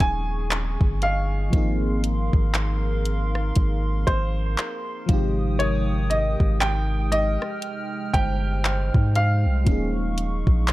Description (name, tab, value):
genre	contemporary R&B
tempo	59 BPM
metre	4/4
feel	swing 58% on 16ths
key	F minor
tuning	A4 = 440 Hz
part	warm baby grand piano	melody	0.0-10.1 s	C5 to Ab5	-28 LUFS	equal	tape echo
part	FM electric piano with soft pad layer	accompaniment	0.0-10.7 s	C3 to Ab4	-30 LUFS	left 1 dB	chorus
part	hollow soft pad	sustained chords	0.0-10.7 s	Ab3 to F6	-34 LUFS	right 1 dB	chorus
part	long sustained 808-style bass	bass	0.0-10.7 s	Eb1 to Ab2	-23 LUFS	equal	none
part	smooth R&B drum kit	drums	0.0-10.7 s	handclaps, hi-hat, kick drum, rim click	-22 LUFS	equal	none
part	synth chime	texture	1.0-9.7 s	Bb4 to F5	-39 LUFS	right 2 dB	ensemble chorus, tape echo
room	little or no reverb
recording	dark, warm production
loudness	-20 LUFS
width	side -17 dB against mid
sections	0.0-10.7 A section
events	none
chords	0.0 Eb9sus4; 1.5 Ab69; 5.1 Fm9/Ab; 9.7 Eb9sus4